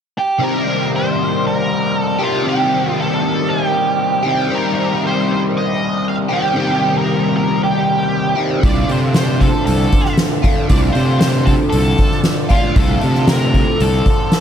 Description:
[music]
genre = psychedelic rock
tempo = 116 BPM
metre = 4/4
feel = straight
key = C dorian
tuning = A4 = 440 Hz
[part]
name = octave-fuzz lead guitar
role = melody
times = 0.2-14.4 s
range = F4 to F5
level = -20 LUFS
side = right 2 dB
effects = wah, distortion, dub echo
[part]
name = hand-pumped harmonium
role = sustained chords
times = 0.4-14.4 s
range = F3 to A5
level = -27 LUFS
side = right 4 dB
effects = none
[part]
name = overdriven semi-hollow guitar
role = riff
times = 0.4-14.4 s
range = C3 to G4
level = -17 LUFS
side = left 2 dB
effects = flanger, dub echo
[part]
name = fuzz fingered electric bass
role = bass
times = 8.6-14.0 s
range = C2 to C3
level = -17 LUFS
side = equal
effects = overdrive
[part]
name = soft-mallet drum kit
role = drums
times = 8.6-14.4 s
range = hi-hat, kick drum, snare drum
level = -16 LUFS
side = equal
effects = none
[sound]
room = little or no reverb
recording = echo-heavy mix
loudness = -13 LUFS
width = side -8 dB against mid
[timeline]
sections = 0.4-14.4 A section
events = none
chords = 0.4 Cm7; 8.6 Dm7/C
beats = | 0.40 0.91 1.43 1.94 | 2.45 2.96 3.48 3.99 | 4.51 5.02 5.54 6.05 | 6.57 7.08 7.59 8.11 | 8.63 9.14 9.66 10.18 | 10.69 11.21 11.73 12.24 | 12.76 13.28 13.80 14.31

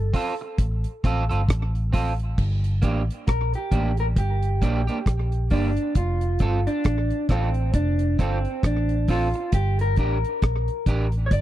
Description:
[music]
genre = roots reggae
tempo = 67 BPM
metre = 4/4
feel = swing 58% on 16ths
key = G minor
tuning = A4 = 441 Hz
[part]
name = electric guitar at the edge of break-up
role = melody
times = 0.0-11.4 s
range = C4 to D5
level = -28 LUFS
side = equal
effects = warbly pitch drift, tape echo
[part]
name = vintage muted fingered electric bass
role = bass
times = 0.0-11.4 s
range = F1 to Bb1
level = -23 LUFS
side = equal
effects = none
[part]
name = electric guitar at the edge of break-up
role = accompaniment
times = 0.1-11.1 s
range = Bb3 to Bb4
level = -30 LUFS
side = right 4 dB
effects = vibrato effect, tape echo
[part]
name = deep reggae drum kit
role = drums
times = 0.1-11.4 s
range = crash cymbal, hi-hat, kick drum, rim click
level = -22 LUFS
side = equal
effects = none
[sound]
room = little or no reverb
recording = dry, close 1970s-style studio recording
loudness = -21 LUFS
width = side -13 dB against mid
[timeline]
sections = 0.0-2.4 A section; 2.4-11.4 B section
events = clean electric guitar solo 2.4-11.4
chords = 0.0 F; 2.4 Gm; 6.0 F; 9.5 Gm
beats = 0.59 1.49 | 2.38 3.27 4.17 5.06 | 5.96 6.85 7.75 8.64 | 9.53 10.43 11.32

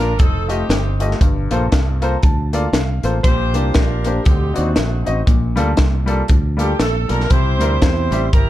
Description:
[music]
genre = uptempo gospel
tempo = 118 BPM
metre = 4/4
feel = swing 60% on 8ths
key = unclear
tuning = A4 = 440 Hz
[part]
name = mellow saxophone section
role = melody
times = 0.0-8.5 s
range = A3 to C5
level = -23 LUFS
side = right 1 dB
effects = none
[part]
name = clear grand piano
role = accompaniment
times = 0.0-8.2 s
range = G2 to Bb5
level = -22 LUFS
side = left 2 dB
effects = none
[part]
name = modern bright fingered electric bass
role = bass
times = 0.0-8.5 s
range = F1 to E2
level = -19 LUFS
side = equal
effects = none
[part]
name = crisp fusion drum kit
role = drums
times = 0.2-8.5 s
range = hi-hat, kick drum, snare drum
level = -17 LUFS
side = equal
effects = none
[sound]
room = little or no reverb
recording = dark, warm production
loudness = -14 LUFS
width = side -14 dB against mid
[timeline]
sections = 0.0-8.5 A section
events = grand piano fill 1.7-3.2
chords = 0.2 F9; 1.2 Gm11; 3.2 Bb69; 4.3 D7b9; 5.3 Gm9/Bb; 7.3 C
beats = 0.19 0.70 | 1.21 1.72 2.23 2.73 | 3.24 3.75 4.26 4.77 | 5.28 5.78 6.29 6.80 | 7.31 7.81 8.32

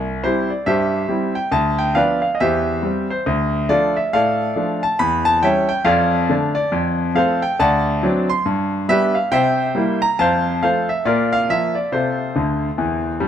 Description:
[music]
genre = jazz, stride piano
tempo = 139 BPM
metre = 4/4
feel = swing 62% on 8ths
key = F major from 6.7 s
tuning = A4 = 437 Hz
[part]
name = clear concert grand piano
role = solo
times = 0.0-13.3 s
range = C2 to C6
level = -16 LUFS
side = equal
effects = none
[sound]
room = moderate echo chamber reverb, RT60 2.4 s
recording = none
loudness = -16 LUFS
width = side -9 dB against mid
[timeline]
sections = 0.0-13.3 A section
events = grand piano fill 12.3-13.3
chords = 0.0 C; 1.5 Bdim/D; 2.4 C/E; 3.3 Dm; 5.0 C#dim/E; 5.9 Dm/F; 6.7 F; 7.6 D7; 8.5 G; 9.3 C7; 10.2 F; 11.1 Bb5; 11.9 F/C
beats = 0.24 0.67 1.10 | 1.54 1.97 2.40 2.83 | 3.27 3.70 4.13 4.57 | 5.00 5.43 5.87 6.30 | 6.73 7.16 7.59 8.03 | 8.46 8.89 9.32 9.76 | 10.19 10.62 11.05 11.49 | 11.92 12.35 12.78 13.21

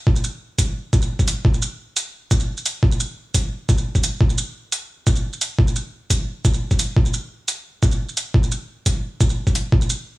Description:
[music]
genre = drum and bass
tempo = 174 BPM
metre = 4/4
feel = straight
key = none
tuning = none
[part]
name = electronic kick drum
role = drums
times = 0.1-9.8 s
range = none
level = -17 LUFS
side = equal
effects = studio reverb
[part]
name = electronic shaker and hi-hat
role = drums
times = 0.2-10.0 s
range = none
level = -25 LUFS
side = right 2 dB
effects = studio reverb
[sound]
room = digital ambience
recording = small room ambience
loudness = -18 LUFS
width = side -19 dB against mid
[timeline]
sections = 0.0-10.2 A section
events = none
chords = none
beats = | 0.07 0.41 0.76 1.10 | 1.45 1.79 2.14 2.48 | 2.83 3.17 3.52 3.86 | 4.21 4.55 4.90 5.24 | 5.59 5.93 6.28 6.62 | 6.96 7.31 7.66 8.00 | 8.34 8.69 9.03 9.38 | 9.72

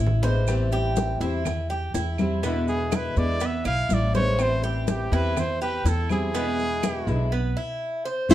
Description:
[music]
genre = latin, Cuban son and guajira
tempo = 123 BPM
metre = 4/4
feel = straight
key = A minor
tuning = A4 = 440 Hz
[part]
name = Cuban tres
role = arpeggios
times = 0.0-8.3 s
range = B3 to C5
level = -30 LUFS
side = right 2 dB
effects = none
[part]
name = upright bass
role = bass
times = 0.0-8.3 s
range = A1 to E2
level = -26 LUFS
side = equal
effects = none
[part]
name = congas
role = percussion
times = 0.1-8.3 s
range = none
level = -30 LUFS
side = equal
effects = none
[part]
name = fingerpicked swing-style acoustic guitar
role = accompaniment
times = 0.2-8.3 s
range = B2 to E4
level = -29 LUFS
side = left 2 dB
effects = none
[part]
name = maracas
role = percussion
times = 0.2-8.3 s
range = none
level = -43 LUFS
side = right 8 dB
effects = none
[part]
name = bongos and cowbell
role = percussion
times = 0.5-8.3 s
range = none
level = -36 LUFS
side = left 7 dB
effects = none
[part]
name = claves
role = percussion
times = 0.5-7.1 s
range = none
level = -41 LUFS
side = right 7 dB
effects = none
[part]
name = clear trumpet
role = melody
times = 2.5-8.3 s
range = E4 to F5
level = -28 LUFS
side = right 1 dB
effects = none
[part]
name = nylon-string guitar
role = second line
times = 8.3 s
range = E4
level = -11 LUFS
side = equal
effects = none
[sound]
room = light reverb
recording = dark, warm production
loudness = -22 LUFS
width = side -13 dB against mid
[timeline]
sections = 0.0-8.3 A section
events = drum fill 0.0-0.5; trumpet solo 0.0-8.3; stop 7.3-8.3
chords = 0.5 Am7; 2.4 E7; 4.4 Am7; 6.3 E7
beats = | 0.48 0.97 1.46 1.95 | 2.43 2.92 3.41 3.90 | 4.39 4.88 5.37 5.86 | 6.35 6.84 7.33 7.81 | 8.30

